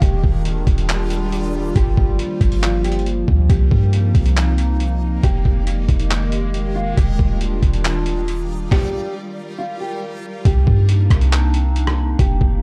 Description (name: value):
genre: hip hop, atmospheric cloud-rap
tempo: 138 BPM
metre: 4/4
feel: half-time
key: C minor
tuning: A4 = 440 Hz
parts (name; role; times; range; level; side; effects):
- mellow electric guitar; melody; 0.0-12.6 s; F4 to G4; -32 LUFS; equal; lush chorus, digital delay
- warbly tape-like pad; sustained chords; 0.0-12.6 s; Eb3 to G4; -27 LUFS; equal; chorus, built-in reverb, sidechain pumping
- clean 808-style bass; bass; 0.0-12.6 s; Eb1 to G2; -20 LUFS; equal; none
- trip hop sampler-style drum kit; drums; 0.0-12.5 s; handclaps, hi-hat, kick drum, rim click, snare drum; -21 LUFS; equal; none
- backwards swelling texture; texture; 0.0-10.4 s; G3 to Eb5; -35 LUFS; equal; built-in reverb
room: little or no reverb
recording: dark, warm production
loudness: -18 LUFS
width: mono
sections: 0.0-10.5 A section; 10.5-12.6 B section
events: stop 8.7-10.5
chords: 0.0 Ebmaj9; 1.8 Gm7; 3.5 Cm9; 5.2 Fm11; 7.0 Ebmaj9; 8.7 Gm7; 10.5 Cm9